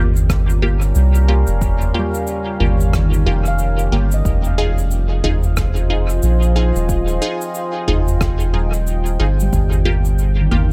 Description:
ambient dub; 91 BPM; 4/4; swing 60% on 16ths; F minor; A4 = 441 Hz
deep dark ambient pad; sustained chords; 0.0-10.7 s; G3 to Ab5; -28 LUFS; equal; chorus, built-in reverb
filtered dub chord stab; stabs; 0.0-10.7 s; Bb3 to Ab4; -28 LUFS; equal; phaser, dub echo
soft dub sub bass; bass; 0.0-10.7 s; Eb1 to C2; -18 LUFS; equal
soft-mallet drum kit; drums; 0.2-10.7 s; cabasa, rim click, toms; -26 LUFS; equal; dub echo
electronic kick drum; drums; 0.3-9.7 s; -24 LUFS; equal; overdrive
handpan; arpeggios; 2.0-10.7 s; Eb3 to F5; -29 LUFS; equal; tape echo
small room ambience; echo-heavy mix; -17 LUFS; mono
0.0-10.7 A section
0.0 Gm7b5; 4.3 Fm7; 9.5 Gm7b5

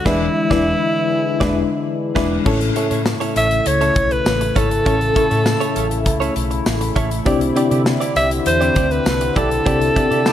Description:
1980s-style pop; 100 BPM; 4/4; straight; A major; A4 = 439 Hz
bright alto saxophone; melody; 0.0-10.3 s; E4 to E5; -19 LUFS; equal
FM electric piano with auto-pan; accompaniment; 0.0-10.3 s; A2 to D5; -21 LUFS; left 3 dB
chorused pulse-width pad; sustained chords; 0.0-10.3 s; C#3 to E4; -25 LUFS; left 1 dB
direct-recorded clean electric guitar; riff; 0.1-10.3 s; B3 to D5; -26 LUFS; right 6 dB; wide subtle chorus, ping-pong delay
vintage muted fingered electric bass; bass; 0.1-10.3 s; E1 to C3; -23 LUFS; equal
modern studio drum kit; drums; 0.1-10.3 s; crash cymbal, hi-hat, kick drum, snare drum, tambourine; -22 LUFS; equal
analog synth brass; stabs; 10.3 s; D4 to G4; -21 LUFS; right 2 dB; chorus
light reverb; lossy compression artefacts; -15 LUFS; side -11 dB against mid
0.0-2.5 A section; 2.5-10.3 B section
band accent 0.1-2.5, 9.7-10.3
0.1 E7; 2.5 A; 7.3 Cadd9

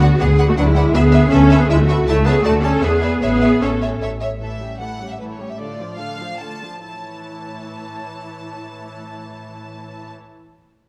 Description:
quick classical-period movement for string orchestra; 132-162 BPM; 3/4; rubato; A major; A4 = 439 Hz
rich studio violin section; melody; 0.0-10.1 s; B4 to A5; -31 LUFS; equal
rich studio violin section; second line; 0.0-10.1 s; C#4 to E5; -34 LUFS; equal
warm studio viola section; accompaniment; 0.0-10.1 s; D3 to E4; -22 LUFS; equal
clear studio double bass section; bass; 0.0-4.4 s; A1 to E2; -19 LUFS; equal
warm symphonic cello section; bass; 0.0-10.1 s; A2 to A4; -26 LUFS; equal
moderate recital hall reverb, RT60 1.6 s; dark, warm production; -15 LUFS; mono
0.0-4.4 A section; 4.4-6.9 B section; 6.9-9.5 C section
slowing down 3.8-6.9
0.0 Bm/D; 0.9 E7/D; 2.1 A/C#; 2.5 D; 2.8 E7; 3.2 A; 4.4 A7; 5.6 Dm/A; 6.9 A

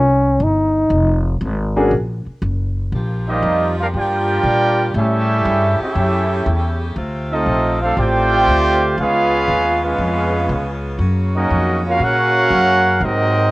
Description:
jazz, big band swing; 119 BPM; 4/4; swing 69% on 8ths; A4 = 441 Hz
mellow trombone; melody; 0.0-1.3 s; Db4 to Eb4; -15 LUFS; equal; cassette tape, plate reverb
upright bass; bass; 0.0-13.5 s; F1 to Bb2; -19 LUFS; equal
warm concert grand piano; accompaniment; 1.8-1.9 s; Bb3 to Ab4; -16 LUFS; left 1 dB; cassette tape, plate reverb
clear saxophone section; sustained chords; 2.9-13.5 s; C3 to G4; -26 LUFS; equal; cassette tape, plate reverb
warm trumpet section; melody; 3.3-13.5 s; Bb3 to G5; -17 LUFS; right 1 dB; cassette tape
warm trombone section; second line; 3.3-13.5 s; F3 to G4; -20 LUFS; right 2 dB; cassette tape, plate reverb
moderate booth ambience, RT60 0.2 s; home recording on cassette; -14 LUFS; side -19 dB against mid
0.0-2.9 A section; 2.9-13.5 B section
trombone solo 0.0-2.9
0.0 Cm; 0.9 Fm; 1.9 Gb; 2.9 Bb6; 4.9 A7; 7.0 Dm7; 9.0 Db7; 11.0 Gbmaj7

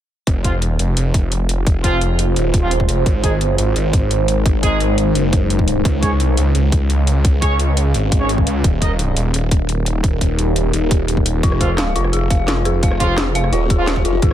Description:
dark technical drum and bass; 172 BPM; 4/4; straight; F minor; A4 = 439 Hz
deep dark ambient pad; sustained chords; 1.4-14.3 s; Ab3 to F5; -23 LUFS; equal; chorus, built-in reverb, sidechain pumping
snarling distorted saw bass; bass; 0.3-14.3 s; Eb1 to Db2; -17 LUFS; equal; overdrive
drum and bass drum kit; drums; 0.3-14.3 s; hi-hat, rim click, snare drum; -23 LUFS; equal
electronic kick drum; drums; 0.3-14.3 s; -16 LUFS; equal; overdrive
warm brass ensemble; stabs; 0.4-8.9, 11.6-13.9 s; F3 to Eb5; -24 LUFS; right 2 dB; digital delay
dark detuned synth bell; arpeggios; 11.4-14.3 s; F4 to F5; -21 LUFS; left 2 dB; chorus, phaser, sidechain pumping, digital delay
formant-sweep wobble bass; bass; 13.5-14.2 s; Eb1 to F1; -19 LUFS; equal; chorus
little or no reverb; -14 LUFS; side -11 dB against mid
0.3-14.3 A section
0.3 Fm; 3.1 Ab7; 5.9 Db; 8.6 Eb; 11.4 Fm

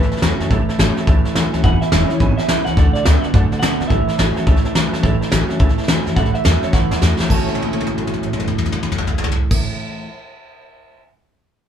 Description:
rockabilly; 212 BPM; 4/4; swing 63% on 8ths; A major; A4 = 440 Hz
electric guitar through a small old amp; melody; 0.0-9.5 s; B4 to A5; -24 LUFS; right 4 dB
honky-tonk upright piano; accompaniment; 0.0-9.5 s; B4 to A5; -30 LUFS; right 3 dB
picked steel-string acoustic guitar; accompaniment; 0.0-10.1 s; E2 to F#4; -24 LUFS; left 5 dB
electric guitar through a small old amp; riff; 0.0-10.1 s; E2 to C#5; -24 LUFS; right 2 dB
upright bass; bass; 0.0-9.5 s; E1 to B2; -19 LUFS; equal
soft brush drum kit; drums; 0.0-11.0 s; crash cymbal, hi-hat, kick drum, snare drum, toms; -18 LUFS; equal
light reverb; band playing live in one room; -14 LUFS; side -9 dB against mid
0.0-6.2 A section; 6.2-7.3 B section; 7.3-9.6 C section
honky-tonk piano fill 1.1-1.6; drum fill 6.7-7.3, 7.4-9.5
0.0 A6; 1.6 E6; 2.8 D6; 3.9 A6

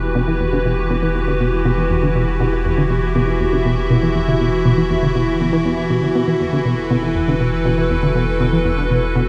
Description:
ambient, sequencer-driven space music; 120 BPM; 4/4; straight; E minor; A4 = 440 Hz
evolving wavetable pad; sustained chords; 0.0-9.3 s; E3 to E5; -21 LUFS; equal; chorus, built-in reverb, shimmer reverb
warm sub bass; bass; 0.0-9.3 s; E1; -26 LUFS; equal
tight sequenced synth; riff; 0.2-9.2 s; E2 to E3; -21 LUFS; equal; chorus, tape echo
moderate plate reverb, RT60 2.5 s; dreamy mix soaked in reverb, nothing above 11.0 kHz; -17 LUFS; mono
0.0-9.3 A section
filter sweep on synth arpeggio sound 0.0-9.3
0.0 Emadd9

